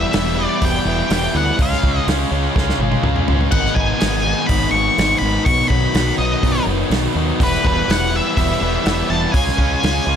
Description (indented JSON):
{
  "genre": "quiet-loud alternative rock",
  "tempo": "124 BPM",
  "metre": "4/4",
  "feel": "straight",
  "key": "unclear",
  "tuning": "A4 = 440 Hz",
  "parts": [
    { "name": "octave-fuzz lead guitar", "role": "melody", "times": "0.0-10.2 s", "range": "B4 to C#6", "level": "-21 LUFS", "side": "left 2 dB", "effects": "distortion, digital delay" },
    { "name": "fuzz guitar", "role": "riff", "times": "0.0-10.2 s", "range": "G#2 to E#4", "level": "-22 LUFS", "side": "left 14 dB", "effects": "distortion" },
    { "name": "thick fuzz guitar", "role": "riff", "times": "0.0-10.2 s", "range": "G#2 to E#4", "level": "-22 LUFS", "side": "right 16 dB", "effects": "distortion" },
    { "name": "growling fingered electric bass", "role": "bass", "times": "0.0-10.2 s", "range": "E1 to D#2", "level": "-21 LUFS", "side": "equal", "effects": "overdrive" },
    { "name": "loose indie drum kit", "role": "drums", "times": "0.1-9.9 s", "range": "crash cymbal, hi-hat, kick drum, snare drum, toms", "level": "-21 LUFS", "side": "equal", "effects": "none" }
  ],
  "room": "light reverb",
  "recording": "none",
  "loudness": "-15 LUFS",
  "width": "side -8 dB against mid",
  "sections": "0.0-10.2 A section",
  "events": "drum fill 2.6-3.5",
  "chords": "0.0 Em; 1.6 C#; 3.5 G#m; 5.5 B; 7.4 Em; 9.3 C#",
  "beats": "0.14 0.62 1.11 | 1.59 2.07 2.56 3.04 | 3.52 4.01 4.49 4.97 | 5.46 5.94 6.43 6.91 | 7.40 7.88 8.37 8.85 | 9.34 9.82"
}